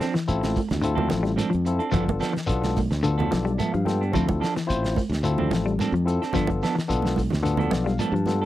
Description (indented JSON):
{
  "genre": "afrobeat",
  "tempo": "109 BPM",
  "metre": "4/4",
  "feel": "straight",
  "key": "D dorian",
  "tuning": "A4 = 441 Hz",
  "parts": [
    { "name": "barky tine electric piano", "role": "accompaniment", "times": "0.0-8.5 s", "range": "B3 to A5", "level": "-28 LUFS", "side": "left 4 dB", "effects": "none" },
    { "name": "clean electric guitar", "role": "stabs", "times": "0.0-8.5 s", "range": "F3 to A4", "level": "-29 LUFS", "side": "right 6 dB", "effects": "none" },
    { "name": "damped 70s drum kit", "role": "drums", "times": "0.0-8.4 s", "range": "hi-hat, kick drum, snare drum", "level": "-30 LUFS", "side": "equal", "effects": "none" },
    { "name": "shekere", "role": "percussion", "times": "0.0-8.4 s", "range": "none", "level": "-34 LUFS", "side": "left 1 dB", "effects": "none" },
    { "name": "semi-hollow electric guitar", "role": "arpeggios", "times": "0.1-8.3 s", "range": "D3 to G3", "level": "-28 LUFS", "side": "left 4 dB", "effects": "none" },
    { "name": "modern bright fingered electric bass", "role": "bass", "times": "0.3-8.5 s", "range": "G1 to G2", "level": "-26 LUFS", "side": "equal", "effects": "none" },
    { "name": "congas", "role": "percussion", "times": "0.4-8.4 s", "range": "none", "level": "-30 LUFS", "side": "right 5 dB", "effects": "none" }
  ],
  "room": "little or no reverb",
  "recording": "dry, close 1970s-style studio recording",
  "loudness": "-21 LUFS",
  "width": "side -14 dB against mid",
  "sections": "0.0-8.5 A section",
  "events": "tine electric piano fill 3.0-4.1, 7.4-8.5",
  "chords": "0.0 Dm7; 1.9 G9; 4.1 Dm7; 6.3 G9"
}